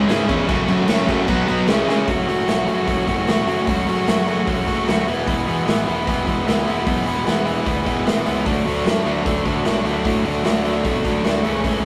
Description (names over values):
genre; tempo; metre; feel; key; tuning
punk rock; 150 BPM; 4/4; straight; F# minor; A4 = 439 Hz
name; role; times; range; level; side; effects
distorted electric guitar; riff; 0.0-11.8 s; F#2 to F#4; -22 LUFS; equal; overdrive
sludgy distorted guitar; riff; 0.0-2.1 s; F#2 to C#4; -25 LUFS; equal; overdrive
thick fuzz guitar; riff; 0.0-2.1 s; F#2 to C#4; -27 LUFS; equal; none
fuzz picked electric bass; bass; 0.0-11.8 s; E1 to C#3; -28 LUFS; equal; overdrive
raw garage drum kit; drums; 0.1-11.7 s; crash cymbal, hi-hat, kick drum, snare drum; -25 LUFS; equal; none
room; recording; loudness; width
light reverb; rough rehearsal-room recording; -19 LUFS; mono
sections
0.0-2.1 A section; 2.1-11.8 B section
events
drum fill 1.9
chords
0.5 F#m; 1.3 B; 1.7 C#m; 2.1 F#m; 5.1 E; 8.5 D